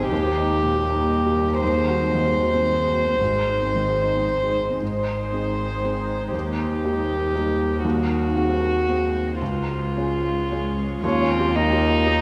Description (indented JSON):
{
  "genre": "neoclassical piano and strings",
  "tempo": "109-122 BPM",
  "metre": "3/4",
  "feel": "rubato",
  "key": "Ab major",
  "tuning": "A4 = 440 Hz",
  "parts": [
    { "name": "warm violin", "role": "melody", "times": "0.0-12.2 s", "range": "Eb4 to C5", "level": "-25 LUFS", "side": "equal", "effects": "none" },
    { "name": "felt-muted upright piano", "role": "accompaniment", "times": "0.0-12.2 s", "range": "Db2 to Ab4", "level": "-29 LUFS", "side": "equal", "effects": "none" },
    { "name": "ethereal airy pad", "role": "sustained chords", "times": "0.0-12.2 s", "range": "G3 to Db5", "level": "-32 LUFS", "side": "equal", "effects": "ensemble chorus, built-in reverb, phaser" },
    { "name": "warm double bass", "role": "bass", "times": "0.0-12.2 s", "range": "Ab1 to Eb2", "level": "-29 LUFS", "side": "equal", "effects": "none" },
    { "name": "warm viola", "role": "accompaniment", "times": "11.1-12.2 s", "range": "Bb3 to Eb4", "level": "-28 LUFS", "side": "equal", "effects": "none" }
  ],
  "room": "wet concert hall reverb, RT60 1.7 s",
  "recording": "recorded in a church or concert hall",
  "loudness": "-22 LUFS",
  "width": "mono",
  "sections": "0.0-4.8 A section; 4.8-11.0 B section; 11.0-12.2 C section",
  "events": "none",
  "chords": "0.1 Eb; 1.6 Ab7/Eb; 3.2 Ab; 6.3 Eb; 7.8 Ab7/Eb; 9.4 Db; 11.0 Eb7"
}